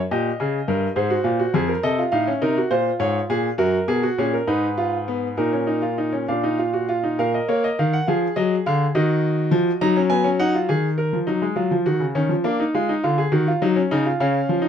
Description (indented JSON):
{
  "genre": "classical, baroque-style 3-part fugue for grand piano",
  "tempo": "69 BPM (dotted quarters)",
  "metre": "6/8",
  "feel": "straight",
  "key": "Eb minor from 3.6 s",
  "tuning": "A4 = 439 Hz",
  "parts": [
    { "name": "bright baby grand piano", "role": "solo", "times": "0.0-14.7 s", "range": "E#2 to Bb5", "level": "-18 LUFS", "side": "equal", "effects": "none" }
  ],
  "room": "light reverb",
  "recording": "close, detailed microphones",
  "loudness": "-18 LUFS",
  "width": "side -8 dB against mid",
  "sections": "0.0-7.2 A section; 7.2-10.7 B section; 10.7-14.7 A section",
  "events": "none",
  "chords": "0.1 D#7/A#; 1.0 G#; 1.8 F7; 2.7 A#m; 3.6 Gbadd9; 4.5 Fm7b5/Ab; 5.4 Bbsus4; 6.3 Bb; 7.2 Ebm/Bb; 8.1 Ddim; 8.9 Ebm; 9.8 Ebm/Gb; 10.7 Ab5/Eb; 11.6 Ebm; 12.4 Bb7; 13.3 Ebm"
}